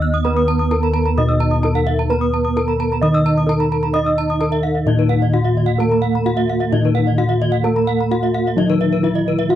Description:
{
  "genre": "Balinese gamelan",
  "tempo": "130 BPM",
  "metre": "4/4",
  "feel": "straight",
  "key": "Eb pelog",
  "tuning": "A4 = 436 Hz",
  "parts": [
    { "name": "gamelan-type bronze metallophone", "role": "melody", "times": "0.0-9.6 s", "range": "Eb4 to Eb5", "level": "-21 LUFS", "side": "left 2 dB", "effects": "none" },
    { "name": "gamelan-type bronze metallophone", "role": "accompaniment", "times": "0.0-9.6 s", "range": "Eb3 to Eb4", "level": "-24 LUFS", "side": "right 7 dB", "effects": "none" },
    { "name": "gamelan-type bronze metallophone", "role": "arpeggios", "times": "0.0-9.6 s", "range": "Cb5-20c to Gb6-30c", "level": "-24 LUFS", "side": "left 4 dB", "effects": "none" },
    { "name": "gamelan-type bronze metallophone", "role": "arpeggios", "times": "0.0-9.5 s", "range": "Eb5 to Eb6", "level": "-27 LUFS", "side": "right 11 dB", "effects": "none" },
    { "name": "gamelan-type bossed gongs", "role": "bass", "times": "0.0-9.6 s", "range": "Eb2 to Eb5", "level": "-18 LUFS", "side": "left 1 dB", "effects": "none" }
  ],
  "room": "little or no reverb",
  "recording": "dry, close 1970s-style studio recording",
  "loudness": "-15 LUFS",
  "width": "side -11 dB against mid",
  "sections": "0.0-9.6 A section",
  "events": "none",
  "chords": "none",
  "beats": "| 0.25 0.71 1.17 1.64 | 2.10 2.56 3.02 3.49 | 3.95 4.41 4.87 5.33 | 5.80 6.26 6.72 7.18 | 7.65 8.11 8.57 9.03 | 9.49"
}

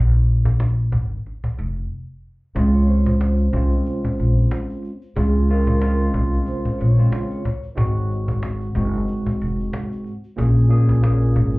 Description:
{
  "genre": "hip hop, boom-bap hip-hop",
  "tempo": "92 BPM",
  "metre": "4/4",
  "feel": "swing 57% on 16ths",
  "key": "Db major",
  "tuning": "A4 = 439 Hz",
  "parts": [
    { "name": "upright bass", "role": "bass", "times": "0.0-11.6 s", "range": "F1 to Db2", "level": "-17 LUFS", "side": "equal", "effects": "none" },
    { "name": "cajon", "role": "drums", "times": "0.3-11.6 s", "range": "none", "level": "-25 LUFS", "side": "equal", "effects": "none" },
    { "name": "tine electric piano", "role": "accompaniment", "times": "2.5-11.6 s", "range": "Ab2 to Ab4", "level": "-24 LUFS", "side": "equal", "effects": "medium stereo tremolo, high-pass filter, low-pass filter" },
    { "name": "egg shaker", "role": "percussion", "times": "2.6-11.6 s", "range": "none", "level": "-65 LUFS", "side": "left 3 dB", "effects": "none" },
    { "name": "vibraphone with soft mallets", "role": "melody", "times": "2.7-7.1 s", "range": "Ab4 to Db5", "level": "-32 LUFS", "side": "left 2 dB", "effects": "high-pass filter, low-pass filter, ping-pong delay" }
  ],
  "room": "little or no reverb",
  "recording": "heard muffled through a wall, club reverb, EQ",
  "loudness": "-17 LUFS",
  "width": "side -22 dB against mid",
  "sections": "0.0-11.6 A section",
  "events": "break 0.0-2.6",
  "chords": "0.0 Bb5; 2.6 Dbmaj7; 7.8 Ab7; 10.4 Bbm7",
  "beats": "0.60 1.25 1.91 | 2.56 3.21 3.86 4.51 | 5.17 5.82 6.47 7.12 | 7.77 8.43 9.08 9.73 | 10.38 11.04"
}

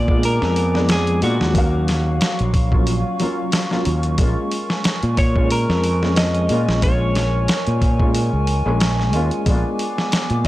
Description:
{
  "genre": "trip hop",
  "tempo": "91 BPM",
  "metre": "4/4",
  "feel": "swing 55% on 16ths",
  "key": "Bb phrygian",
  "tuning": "A4 = 440 Hz",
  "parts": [
    { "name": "clean electric guitar", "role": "melody", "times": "0.0-8.1 s", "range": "Gb4 to Eb5", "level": "-25 LUFS", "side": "equal", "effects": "tape echo" },
    { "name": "felt-muted upright piano", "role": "accompaniment", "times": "0.0-10.5 s", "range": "Gb3 to F5", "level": "-24 LUFS", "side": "left 1 dB", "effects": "harmonic tremolo" },
    { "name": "warbly tape-like pad", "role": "sustained chords", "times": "0.0-10.5 s", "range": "Gb3 to D6", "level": "-27 LUFS", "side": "right 1 dB", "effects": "chorus, built-in reverb" },
    { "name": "growling fingered electric bass", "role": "bass", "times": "0.0-10.5 s", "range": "Bb1 to Bb2", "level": "-19 LUFS", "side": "equal", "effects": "overdrive" },
    { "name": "dusty soul sampler-style drum kit", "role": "drums", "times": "0.1-10.5 s", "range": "hi-hat, kick drum, snare drum", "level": "-20 LUFS", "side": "equal", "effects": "studio reverb" }
  ],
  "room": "digital ambience",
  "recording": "dry, gritty hardware recording",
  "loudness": "-16 LUFS",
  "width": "side -16 dB against mid",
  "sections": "0.0-10.5 A section",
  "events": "none",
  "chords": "0.0 Bb7b9; 1.5 Ebm9; 4.2 Bbm7; 9.5 Bb7b9",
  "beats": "0.23 0.89 | 1.55 2.21 2.87 3.53 | 4.19 4.84 5.50 6.16 | 6.82 7.48 8.14 8.80 | 9.46 10.12"
}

